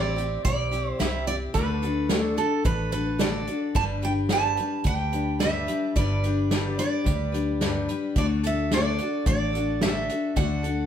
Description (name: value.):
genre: honky-tonk and classic country.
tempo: 109 BPM.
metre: 4/4.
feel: straight.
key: G major.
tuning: A4 = 440 Hz.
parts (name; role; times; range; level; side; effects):
picked steel-string acoustic guitar; melody; 0.0-10.9 s; A4 to A5; -28 LUFS; right 4 dB; none.
picked steel-string acoustic guitar; accompaniment; 0.0-10.9 s; G2 to B4; -28 LUFS; left 4 dB; none.
vintage muted fingered electric bass; bass; 0.0-10.9 s; G1 to D2; -29 LUFS; equal; none.
unplugged drum kit; drums; 0.2-10.8 s; hi-hat, kick drum, snare drum; -27 LUFS; right 1 dB; none.
room: wet studio reverb, RT60 0.7 s.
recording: heard from further back in the room.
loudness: -23 LUFS.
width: side -9 dB against mid.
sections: 0.0-10.9 A section.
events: none.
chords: 0.0 C; 1.6 D; 3.8 G; 8.2 D.